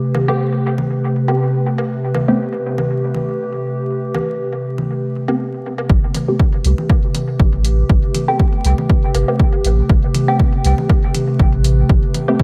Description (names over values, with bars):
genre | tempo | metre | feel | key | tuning
dub techno | 120 BPM | 4/4 | swing 55% on 16ths | A minor | A4 = 440 Hz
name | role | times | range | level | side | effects
warbly tape-like pad | sustained chords | 0.0-12.4 s | C3 to B4 | -22 LUFS | equal | chorus, built-in reverb, sidechain pumping
congas and woodblock | percussion | 0.1-12.3 s | none | -29 LUFS | equal | overdrive, sidechain pumping on perc, dub echo
filtered dub chord stab | stabs | 0.3-12.4 s | A3 to G4 | -24 LUFS | equal | phaser, sidechain pumping, dub echo
warm sub bass | bass | 5.9-12.0 s | G1 to C2 | -18 LUFS | equal | sidechain pumping
electronic kick drum | drums | 5.9-12.4 s | none | -16 LUFS | equal | overdrive
electronic hi-hat | drums | 6.1-12.3 s | none | -29 LUFS | equal | none
room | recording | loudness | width
light reverb | vinyl crackle | -17 LUFS | mono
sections
0.0-5.9 A section; 5.9-12.4 B section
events
none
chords
0.0 Am9